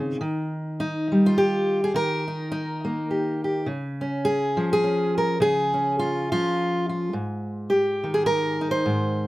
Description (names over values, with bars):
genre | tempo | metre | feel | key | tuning
folk, solo fingerstyle acoustic guitar | 104 BPM | 3/4 | swing 57% on 8ths | unclear | A4 = 442 Hz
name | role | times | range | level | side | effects
fingerpicked steel-string acoustic guitar | solo | 0.0-9.3 s | Ab2 to C5 | -22 LUFS | equal | none
room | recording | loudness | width
light reverb | none | -22 LUFS | side -17 dB against mid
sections
0.2-9.3 A section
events
none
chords
0.2 Eb; 3.7 Db; 7.1 Ab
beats
| 0.22 0.80 1.37 | 1.95 2.52 3.10 | 3.67 4.25 4.83 | 5.40 5.98 6.55 | 7.13 7.70 8.28 | 8.86